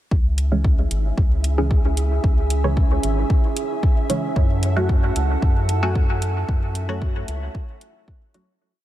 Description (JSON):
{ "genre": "dub techno", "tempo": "113 BPM", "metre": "4/4", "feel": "straight", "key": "C# minor", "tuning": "A4 = 440 Hz", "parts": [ { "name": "warbly tape-like pad", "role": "sustained chords", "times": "0.1-8.6 s", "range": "C#4 to A5", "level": "-29 LUFS", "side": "right 4 dB", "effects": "chorus, built-in reverb, sidechain pumping" }, { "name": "round analog bass", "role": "bass", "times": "0.1-7.5 s", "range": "G#1 to F#2", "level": "-22 LUFS", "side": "equal", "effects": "sidechain pumping" }, { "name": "electronic kick drum", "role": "drums", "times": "0.1-8.2 s", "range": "none", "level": "-19 LUFS", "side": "equal", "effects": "overdrive" }, { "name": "flickering grainy texture", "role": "texture", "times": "0.6-8.6 s", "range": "E4 to E5", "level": "-35 LUFS", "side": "right 1 dB", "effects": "built-in reverb, sidechain pumping" }, { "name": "electronic hi-hat", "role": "drums", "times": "0.4-8.5 s", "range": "none", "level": "-31 LUFS", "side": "right 1 dB", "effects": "overdrive" }, { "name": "filtered dub chord stab", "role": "stabs", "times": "0.5-8.5 s", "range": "C#3 to F#4", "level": "-27 LUFS", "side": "equal", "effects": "chorus, phaser, sidechain pumping, dub echo" } ], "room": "light reverb, digital ambience", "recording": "none", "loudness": "-18 LUFS", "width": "side -14 dB against mid", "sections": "0.1-8.6 groove", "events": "fade-out 5.8-8.6", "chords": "0.1 C#m; 4.4 F#m", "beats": "| 0.11 0.65 1.18 1.71 | 2.24 2.77 3.30 3.83 | 4.36 4.89 5.42 5.96 | 6.49 7.02 7.55 8.08" }